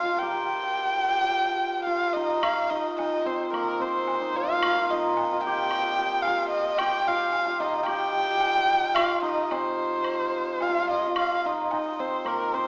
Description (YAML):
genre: chinese traditional, Chinese chamber ensemble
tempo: 109 BPM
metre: 4/4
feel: straight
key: unclear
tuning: A4 = 440 Hz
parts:
  - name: dark erhu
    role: melody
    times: 0.0-12.7 s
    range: Bb4 to G5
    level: -28 LUFS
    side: equal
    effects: none
  - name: hammered dulcimer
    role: second line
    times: 0.0-12.7 s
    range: Bb3 to Bb4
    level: -30 LUFS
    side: equal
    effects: none
  - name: woodblock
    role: percussion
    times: 2.4-12.4 s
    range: none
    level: -36 LUFS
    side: equal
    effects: none
room: wet recital hall reverb, RT60 1.7 s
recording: recorded in a church or concert hall, small speaker sound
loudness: -26 LUFS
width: mono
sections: 0.0-2.4 A section; 2.4-12.7 B section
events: none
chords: none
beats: | 0.19 0.74 1.29 1.86 | 2.42 2.97 3.52 4.07 | 4.62 5.16 5.70 6.24 | 6.78 7.32 7.86 8.40 | 8.95 9.49 10.04 10.60 | 11.15 11.71 12.26